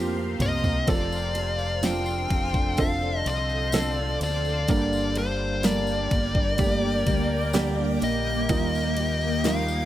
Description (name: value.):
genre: pop ballad.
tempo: 63 BPM.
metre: 4/4.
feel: straight.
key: unclear.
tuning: A4 = 439 Hz.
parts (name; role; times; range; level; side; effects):
warm upright piano; accompaniment; 0.0-9.9 s; G2 to C5; -30 LUFS; right 4 dB; none.
shimmering ambient pad; sustained chords; 0.0-9.9 s; Bb3 to Eb6; -32 LUFS; left 1 dB; chorus, built-in reverb, phaser.
picked steel-string acoustic guitar; arpeggios; 0.0-9.9 s; G2 to Bb4; -33 LUFS; left 2 dB; none.
fingered electric bass; bass; 0.0-9.9 s; F1 to F2; -29 LUFS; equal; none.
fuzz lead guitar; melody; 0.4-9.9 s; C5 to G5; -28 LUFS; left 2 dB; distortion.
pop drum kit; drums; 0.4-9.7 s; kick drum, ride cymbal, snare drum, toms; -27 LUFS; equal; none.
tambourine; percussion; 0.4-9.9 s; none; -43 LUFS; left 4 dB; none.
room: little or no reverb.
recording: none.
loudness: -22 LUFS.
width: side -12 dB against mid.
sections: 0.0-9.9 A section.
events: drum fill 0.0-0.9.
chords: 0.0 Bbsus2; 0.9 F6; 4.7 Gm; 8.5 Ebadd9.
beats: | 0.88 1.83 2.78 3.73 | 4.68 5.64 6.59 7.54 | 8.49 9.45.